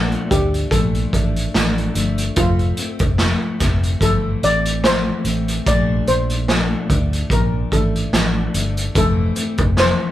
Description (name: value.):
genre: indie pop, bedroom pop.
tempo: 73 BPM.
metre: 4/4.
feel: swing 55% on 16ths.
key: unclear.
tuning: A4 = 441 Hz.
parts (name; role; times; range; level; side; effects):
steel pan; melody; 0.0-10.1 s; F4 to D5; -21 LUFS; equal; none.
picked steel-string acoustic guitar; accompaniment; 0.0-10.1 s; F2 to D4; -23 LUFS; left 4 dB; vibrato effect.
vintage muted fingered electric bass; bass; 0.0-9.9 s; F1 to D2; -20 LUFS; equal; none.
raw garage drum kit; drums; 0.1-10.0 s; hi-hat, kick drum, snare drum; -20 LUFS; right 1 dB; none.
room: light reverb.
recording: band playing live in one room.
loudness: -16 LUFS.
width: side -13 dB against mid.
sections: 0.0-10.1 A section.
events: none.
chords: 0.0 Bbmaj7; 2.4 Fmaj7; 5.7 Bbmaj7; 9.0 Fmaj7.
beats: 0.72 1.54 | 2.37 3.19 4.01 4.84 | 5.66 6.48 7.31 8.13 | 8.95 9.78.